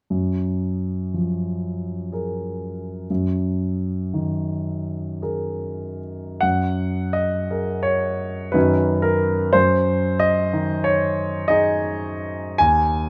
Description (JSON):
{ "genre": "classical, impressionist solo piano", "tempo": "47-63 BPM", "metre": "3/4", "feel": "rubato", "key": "F# major", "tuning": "A4 = 440 Hz", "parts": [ { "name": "clear grand piano", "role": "solo", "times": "0.1-13.1 s", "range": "D#2 to G#5", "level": "-22 LUFS", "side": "equal", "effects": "none" } ], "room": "light reverb", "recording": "close, detailed microphones", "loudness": "-22 LUFS", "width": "mono", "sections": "0.1-6.4 A section; 6.4-13.1 B section", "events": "none", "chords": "0.1 F#maj9; 3.1 G#sus2/F#; 6.4 F#add9; 8.5 Badd9/F#; 9.6 G#5/F#" }